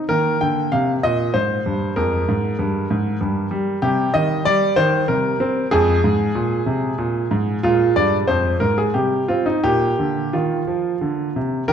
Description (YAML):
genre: classical-period piano sonatina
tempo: 85-98 BPM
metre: 3/4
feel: rubato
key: unclear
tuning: A4 = 440 Hz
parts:
  - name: clear baby grand piano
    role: solo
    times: 0.0-11.7 s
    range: F2 to G5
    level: -17 LUFS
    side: equal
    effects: none
room: wet recital hall reverb, RT60 1.4 s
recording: dark, warm production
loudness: -17 LUFS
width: side -8 dB against mid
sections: 0.0-11.7 A section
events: none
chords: 0.1 Eb; 2.0 Fmadd11; 3.2 N.C.; 3.8 Cm; 5.1 C5; 5.7 Fm; 7.6 Bb5; 8.9 C5; 9.6 Bb